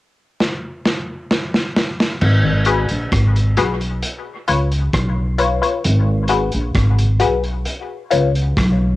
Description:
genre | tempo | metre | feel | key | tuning
dub reggae | 66 BPM | 4/4 | straight | G# dorian | A4 = 439 Hz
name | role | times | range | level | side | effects
crunchy breakbeat drum kit | drums | 0.4-8.8 s | crash cymbal, hi-hat, kick drum, rim click, snare drum | -20 LUFS | equal | cassette tape
upright bass | bass | 2.2-9.0 s | G#1 to C#2 | -16 LUFS | equal | none
mellow tonewheel organ | accompaniment | 2.4-2.5 s | G#2 to D#3 | -24 LUFS | left 5 dB | slow rotary speaker, cassette tape, dub echo
filtered dub chord stab | stabs | 2.7-8.3 s | E#4 to C#5 | -20 LUFS | left 5 dB | phaser, high-pass filter, cassette tape, dub echo, plate reverb
room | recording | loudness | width
light reverb | home recording on cassette | -15 LUFS | side -17 dB against mid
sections
0.0-2.2 A section; 2.2-9.0 B section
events
drum fill 0.4-2.2; filter sweep on synth stab 5.8-9.0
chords
0.0 N.C.; 2.2 G#m7; 4.0 C#7; 5.8 G#m7; 7.7 C#7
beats
0.39 1.30 | 2.21 3.12 4.03 4.93 | 5.84 6.75 7.66 8.57

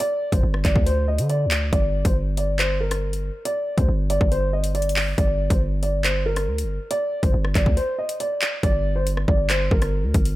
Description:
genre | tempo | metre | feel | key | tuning
hip hop, drill | 139 BPM | 4/4 | half-time | G minor | A4 = 436 Hz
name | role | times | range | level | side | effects
dark concert grand piano | melody | 0.0-10.3 s | Bb4 to Eb5 | -25 LUFS | equal | low-pass filter, digital delay
drill drum kit | drums | 0.0-10.4 s | handclaps, hi-hat, kick drum, rim click | -22 LUFS | equal | none
distorted 808-style bass | bass | 0.3-10.4 s | G1 to D3 | -22 LUFS | equal | distortion
room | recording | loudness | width
little or no reverb | none | -19 LUFS | side -16 dB against mid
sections
0.0-8.6 A section; 8.6-10.4 B section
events
break 7.8-8.6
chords
0.0 G5; 1.7 Gm; 3.5 G5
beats
| 0.00 0.43 0.86 1.29 | 1.73 2.16 2.59 3.02 | 3.45 3.88 4.32 4.75 | 5.18 5.61 6.04 6.47 | 6.91 7.34 7.77 8.20 | 8.63 9.06 9.50 9.93

